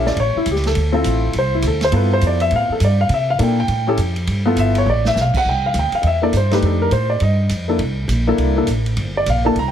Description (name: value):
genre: jazz piano trio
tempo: 204 BPM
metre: 4/4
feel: swing 62% on 8ths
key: C mixolydian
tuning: A4 = 442 Hz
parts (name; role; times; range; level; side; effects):
- dark baby grand piano; melody; 0.0-9.7 s; A3 to Bb5; -18 LUFS; left 1 dB; plate reverb
- upright bass; bass; 0.0-9.7 s; G1 to C3; -18 LUFS; right 1 dB; none
- vintage drum kit; drums; 0.1-9.6 s; crash cymbal, hi-hat, kick drum, ride cymbal, snare drum; -28 LUFS; right 2 dB; none
room: light reverb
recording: heavily compressed radio sound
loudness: -15 LUFS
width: side -9 dB against mid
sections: 0.0-5.4 A section; 5.4-9.7 A section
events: grand piano solo 0.0-9.7; drum fill 4.9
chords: 0.0 A7; 0.8 Dm7; 1.9 G13; 3.1 C13; 3.7 A7(no3); 4.3 G13; 5.4 Cadd9; 6.6 F13; 7.8 C13; 9.0 Gm